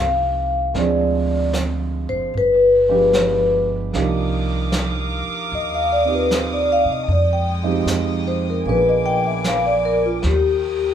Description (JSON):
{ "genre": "jazz ballad", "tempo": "76 BPM", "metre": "4/4", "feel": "swing 69% on 8ths", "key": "C minor", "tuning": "A4 = 437 Hz", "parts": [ { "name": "vibraphone with medium mallets", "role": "melody", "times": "0.0-10.9 s", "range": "F4 to G5", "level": "-18 LUFS", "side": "left 2 dB", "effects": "none" }, { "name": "warm grand piano", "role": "accompaniment", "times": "0.0-10.3 s", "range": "F3 to Ab4", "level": "-24 LUFS", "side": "right 6 dB", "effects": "none" }, { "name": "upright bass", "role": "bass", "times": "0.0-10.9 s", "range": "F#1 to C3", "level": "-24 LUFS", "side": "equal", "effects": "none" }, { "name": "vintage brush drum kit", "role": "drums", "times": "0.7-10.9 s", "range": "brushed snare drum, hi-hat, snare drum", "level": "-28 LUFS", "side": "right 1 dB", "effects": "none" }, { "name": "warm chamber string section", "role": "sustained chords", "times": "3.9-10.9 s", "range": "Ab3 to Eb6", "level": "-28 LUFS", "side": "equal", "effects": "none" } ], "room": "light reverb", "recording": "band playing live in one room", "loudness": "-16 LUFS", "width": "side -9 dB against mid", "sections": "0.0-3.9 A section; 3.9-10.9 B section", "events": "vibraphone solo 3.9-10.9", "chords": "0.0 Cm7; 0.8 Dm7b5; 2.3 G7b9; 3.9 Cm11; 7.1 Fm9; 8.7 Bb7b9; 10.2 Eb", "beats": "| 0.75 1.54 2.33 3.14 | 3.94 4.73 5.52 6.31 | 7.09 7.88 8.66 9.45 | 10.24" }